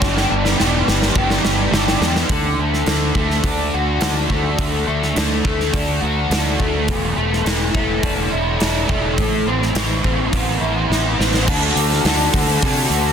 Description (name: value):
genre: rock, shoegaze and dream pop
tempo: 105 BPM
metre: 4/4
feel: straight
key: D mixolydian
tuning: A4 = 440 Hz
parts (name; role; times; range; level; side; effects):
- overdriven electric guitar; riff; 0.0-13.1 s; E2 to A4; -18 LUFS; equal; analog chorus
- growling fingered electric bass; bass; 0.0-13.1 s; E1 to C3; -22 LUFS; equal; overdrive
- gated 80s drum kit; drums; 0.0-13.0 s; crash cymbal, hi-hat, kick drum, snare drum; -20 LUFS; equal; soft clipping on kick
room: studio reverb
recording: dense, heavily limited modern master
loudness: -15 LUFS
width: side -8 dB against mid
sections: 0.0-2.3 A section; 2.3-11.5 B section; 11.5-13.1 B section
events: drum fill 0.0-2.3, 10.9-11.5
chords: 0.0 G; 2.3 D; 6.9 E7sus4; 9.2 Amadd9; 11.5 D